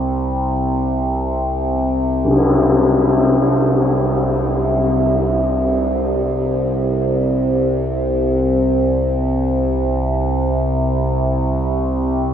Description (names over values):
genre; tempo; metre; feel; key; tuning
dark ambient drone; free time; none; none; unclear; A4 = 440 Hz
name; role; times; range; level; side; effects
overtone-sweeping drone; drone; 0.0-12.3 s; C2 to C3; -16 LUFS; equal; chorus, built-in reverb
tam-tam; percussion; 2.3-2.4 s; none; -18 LUFS; left 2 dB; low-pass filter on cymbals
room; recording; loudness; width
wet huge ambient reverb, RT60 8.0 s; none; -15 LUFS; side -8 dB against mid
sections
0.0-12.3 A section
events
none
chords
none